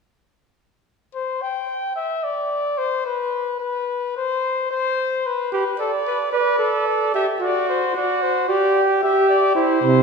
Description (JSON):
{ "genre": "classical, imitative canzona for brass ensemble", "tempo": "111 BPM", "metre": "4/4", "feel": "straight", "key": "unclear", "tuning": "A4 = 436 Hz", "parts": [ { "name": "warm trumpet", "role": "melody", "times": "1.1-10.0 s", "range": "A4 to G5", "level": "-22 LUFS", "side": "left 4 dB", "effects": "none" }, { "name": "clear flugelhorn", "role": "second line", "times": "5.5-10.0 s", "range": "E4 to D5", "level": "-18 LUFS", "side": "right 2 dB", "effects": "none" }, { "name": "warm trombone", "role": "accompaniment", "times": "9.8-10.0 s", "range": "C3", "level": "-14 LUFS", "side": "right 4 dB", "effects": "none" } ], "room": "wet concert hall reverb, RT60 2.3 s", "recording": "heard from further back in the room", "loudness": "-19 LUFS", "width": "side -5 dB against mid", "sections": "0.9-10.0 A section", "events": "none", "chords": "0.9 N.C.; 5.2 G (rootless); 7.4 D7/F#; 8.5 G5", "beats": "| 0.87 1.42 1.97 2.51 | 3.06 3.61 4.15 4.70 | 5.25 5.79 6.33 6.87 | 7.41 7.95 8.49 9.03 | 9.56" }